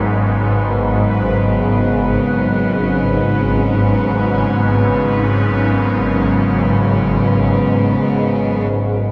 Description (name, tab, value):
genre	ambient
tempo	free time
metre	none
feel	none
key	G# minor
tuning	A4 = 439 Hz
part	warm symphonic cello section	sustained chords	0.0-9.1 s	G#2 to D#4	-18 LUFS	equal	shimmer reverb
part	swarming drone	drone	0.0-9.1 s	G#1 to G#2	-20 LUFS	equal	built-in reverb
part	bubbling stepped-filter texture	texture	0.0-9.1 s	B4	-26 LUFS	equal	chorus, built-in reverb, shimmer reverb
part	quartz singing bowl	arpeggios	8.7-9.1 s	none	barely audible	none	none
room	wet cathedral reverb, RT60 5.2 s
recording	in a vast, echoing space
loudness	-16 LUFS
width	mono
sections	0.0-8.7 A section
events	none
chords	0.0 G#m